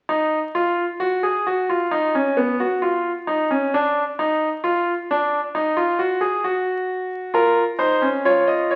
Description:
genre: classical, baroque-style 3-part fugue for grand piano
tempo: 66 BPM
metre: 4/4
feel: straight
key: unclear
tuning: A4 = 439 Hz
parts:
  - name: bright concert grand piano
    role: solo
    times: 0.1-8.8 s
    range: Cb4 to Eb5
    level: -21 LUFS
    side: equal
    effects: none
room: wet stone room reverb, RT60 1.2 s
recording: very old 78 rpm record, vinyl crackle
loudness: -21 LUFS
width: mono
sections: 0.1-8.8 A section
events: none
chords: 0.1 N.C.; 7.4 Bbm

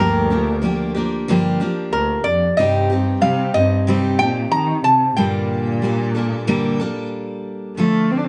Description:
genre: acoustic folk duo or small band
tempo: 92 BPM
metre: 4/4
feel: straight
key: G minor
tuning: A4 = 442 Hz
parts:
  - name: lap resonator guitar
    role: melody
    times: 0.0-7.1 s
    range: Bb4 to Bb5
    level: -21 LUFS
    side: equal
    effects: none
  - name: dark cello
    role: second line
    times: 0.0-8.3 s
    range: D2 to D4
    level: -24 LUFS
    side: equal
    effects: none
  - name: picked steel-string acoustic guitar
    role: accompaniment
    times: 0.0-8.3 s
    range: G2 to A4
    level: -22 LUFS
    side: equal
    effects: none
room: moderate small room reverb, RT60 0.5 s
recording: nothing above 10.5 kHz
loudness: -19 LUFS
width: mono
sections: 0.0-7.8 A section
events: none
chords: 0.0 Gm7; 2.6 Cm; 5.2 Gmadd9; 7.8 Dm

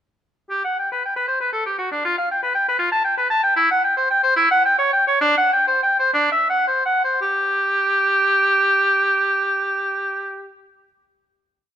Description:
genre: classical, baroque-style fantasia for unaccompanied oboe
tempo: 53-80 BPM (dotted quarters)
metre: 6/8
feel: rubato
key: G major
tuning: A4 = 440 Hz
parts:
  - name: clear oboe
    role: solo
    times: 0.5-10.5 s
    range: D4 to A5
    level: -16 LUFS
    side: equal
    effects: none
room: light reverb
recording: close, detailed microphones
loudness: -16 LUFS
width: side -10 dB against mid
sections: 0.5-7.2 A section; 7.2-11.6 final chord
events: slowing down 2.8-7.2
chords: none

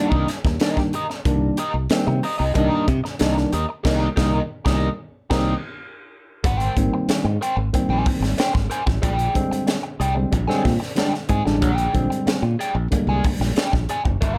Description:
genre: funk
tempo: 93 BPM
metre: 4/4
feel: straight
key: unclear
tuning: A4 = 440 Hz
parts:
  - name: crunchy overdriven guitar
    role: accompaniment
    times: 0.0-14.4 s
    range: B3 to Ab5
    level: -28 LUFS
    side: equal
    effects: wah
  - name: tine electric piano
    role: stabs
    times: 0.0-13.5 s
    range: D3 to D4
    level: -25 LUFS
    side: equal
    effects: none
  - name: modern bright fingered electric bass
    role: bass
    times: 0.1-14.4 s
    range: F#1 to C3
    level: -25 LUFS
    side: equal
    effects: none
  - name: crisp fusion drum kit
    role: drums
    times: 0.1-14.4 s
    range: crash cymbal, hi-hat, kick drum, snare drum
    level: -26 LUFS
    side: equal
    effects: none
room: light reverb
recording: none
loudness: -21 LUFS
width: mono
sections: 0.0-6.4 A section; 6.4-14.4 B section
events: band accent 3.8-6.4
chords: 0.0 Cm7; 6.4 Abmaj9; 9.0 Bb13

